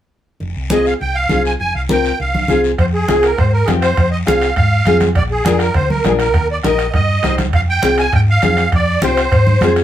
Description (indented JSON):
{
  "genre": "latin, cumbia",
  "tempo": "202 BPM",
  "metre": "4/4",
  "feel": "straight",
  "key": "F dorian",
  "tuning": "A4 = 440 Hz",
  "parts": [
    { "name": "hollow-body short-scale fingered electric bass", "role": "bass", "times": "0.4-9.8 s", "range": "F1 to Ab2", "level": "-18 LUFS", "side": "equal", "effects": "none" },
    { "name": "congas", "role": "percussion", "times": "0.4-9.8 s", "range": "none", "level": "-22 LUFS", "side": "right 1 dB", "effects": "none" },
    { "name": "guiro", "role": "percussion", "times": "0.4-9.8 s", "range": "none", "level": "-32 LUFS", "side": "left 6 dB", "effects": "none" },
    { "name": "musette accordion", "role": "melody", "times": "0.7-9.7 s", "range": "Ab4 to Ab5", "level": "-18 LUFS", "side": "right 2 dB", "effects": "none" },
    { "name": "nylon-string guitar", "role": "accompaniment", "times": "0.7-9.8 s", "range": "C4 to C5", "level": "-16 LUFS", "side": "left 2 dB", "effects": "none" },
    { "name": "bombo", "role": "percussion", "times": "2.8-9.8 s", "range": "none", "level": "-20 LUFS", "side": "right 1 dB", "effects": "none" },
    { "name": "timbales", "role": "percussion", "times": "2.8-9.8 s", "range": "none", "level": "-30 LUFS", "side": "right 5 dB", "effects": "none" }
  ],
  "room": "moderate studio reverb, RT60 0.5 s",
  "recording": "band playing live in one room",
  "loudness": "-12 LUFS",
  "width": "side -11 dB against mid",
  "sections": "0.4-2.8 A section; 2.8-9.8 B section",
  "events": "none",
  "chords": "0.4 Fm; 5.2 Bb; 6.3 Eb; 7.5 Fm",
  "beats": "| 0.42 0.71 1.01 1.31 | 1.60 1.90 2.20 2.49 | 2.79 3.09 3.38 3.68 | 3.98 4.27 4.57 4.87 | 5.16 5.46 5.75 6.05 | 6.35 6.64 6.94 7.24 | 7.54 7.83 8.13 8.43 | 8.72 9.02 9.32 9.61"
}